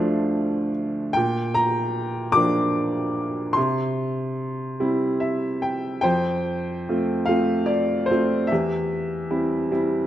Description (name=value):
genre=classical, lyrical solo piano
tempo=49 BPM (dotted quarters)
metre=6/8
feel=rubato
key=F major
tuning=A4 = 440 Hz
part: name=clear upright piano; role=solo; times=0.0-10.1 s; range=D2 to D6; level=-21 LUFS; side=equal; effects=none
room=moderate recital hall reverb, RT60 1.3 s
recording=none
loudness=-21 LUFS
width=side -12 dB against mid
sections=0.0-6.1 A section; 6.1-10.1 B section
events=upright piano fill 4.8-6.1, 9.7-10.1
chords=0.0 Dm; 1.2 Bb; 3.6 C; 6.1 F; 8.5 C/E